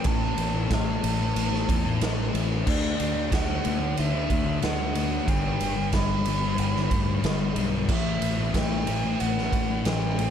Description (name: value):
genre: rock, shoegaze and dream pop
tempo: 92 BPM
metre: 4/4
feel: straight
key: unclear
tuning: A4 = 444 Hz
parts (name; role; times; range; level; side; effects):
- silver concert flute; melody; 0.0-10.3 s; D5 to B5; -32 LUFS; right 5 dB; digital delay
- thick fuzz guitar; riff; 0.0-10.3 s; G2 to D4; -27 LUFS; left 6 dB; distortion, ensemble chorus
- raw garage drum kit; drums; 0.0-10.3 s; crash cymbal, kick drum, ride cymbal, snare drum; -27 LUFS; right 2 dB; none
- growling fingered electric bass; bass; 0.1-10.3 s; G1 to E2; -30 LUFS; right 1 dB; overdrive
room: little or no reverb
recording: dark, warm production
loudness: -23 LUFS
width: side -8 dB against mid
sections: 0.0-10.3 A section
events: none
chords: 0.0 A5; 2.7 D; 5.3 G; 7.9 A5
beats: | 0.05 0.71 1.36 2.01 | 2.67 3.32 3.97 4.62 | 5.28 5.93 6.58 7.24 | 7.89 8.54 9.20 9.85